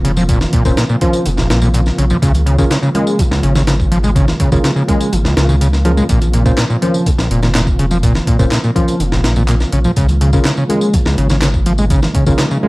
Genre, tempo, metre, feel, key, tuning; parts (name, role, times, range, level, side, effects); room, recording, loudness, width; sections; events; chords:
breakbeat, breaks; 124 BPM; 4/4; straight; Bb minor; A4 = 440 Hz
mellow tonewheel organ; sustained chords; 0.0-12.7 s; Db3 to F4; -23 LUFS; equal; chorus vibrato, slow rotary speaker, sidechain pumping
overdriven acid bass; riff; 0.0-12.7 s; Bb1 to Ab3; -15 LUFS; equal; distortion, analog chorus, vintage 12-bit sampler grit, tape echo
saturated sub bass; bass; 0.0-12.3 s; F1 to Db2; -16 LUFS; equal
breakbeat sampler-style drum kit; drums; 0.0-12.5 s; hi-hat, kick drum, snare drum; -16 LUFS; equal; small room ambience
electronic tambourine and handclaps; drums; 0.2-12.6 s; -28 LUFS; equal; small room ambience
congas; percussion; 0.2-12.7 s; -26 LUFS; right 1 dB
tine electric piano; stabs; 0.7-12.7 s; Db4 to C5; -21 LUFS; equal; overdrive, medium stereo tremolo, tape echo
little or no reverb; dry, gritty hardware recording, vinyl crackle; -11 LUFS; side -21 dB against mid
0.0-12.7 A section
0.0 Bbmadd9; 2.2 Db6; 6.1 Bbmadd9; 10.0 Db6